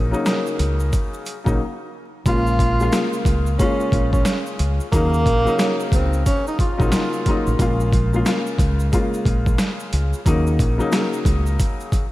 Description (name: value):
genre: hip hop, boom-bap hip-hop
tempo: 90 BPM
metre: 4/4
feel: swing 62% on 16ths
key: Bb minor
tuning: A4 = 440 Hz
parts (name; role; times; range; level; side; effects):
- dark upright piano; accompaniment; 0.0-12.0 s; Db3 to F4; -23 LUFS; left 2 dB; cassette tape, high-pass filter, low-pass filter
- deep dub fingered electric bass; bass; 0.0-11.6 s; A1 to Eb2; -20 LUFS; equal; none
- tube shaker; percussion; 0.1-12.1 s; none; -42 LUFS; right 3 dB; none
- boom bap sampler-style drum kit; drums; 0.3-12.1 s; hi-hat, kick drum, snare drum; -21 LUFS; equal; overdrive
- breathy tenor saxophone; melody; 2.3-7.6 s; Bb3 to F4; -23 LUFS; right 1 dB; high-pass filter, low-pass filter, ping-pong delay
room: light reverb, small room ambience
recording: vinyl crackle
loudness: -17 LUFS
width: side -17 dB against mid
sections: 0.0-2.3 A section; 2.3-12.1 B section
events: break 1.6-2.3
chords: 0.0 Ebm7; 2.3 Bbm7; 4.9 Ebm7; 7.6 Bbm7; 10.3 Ebm7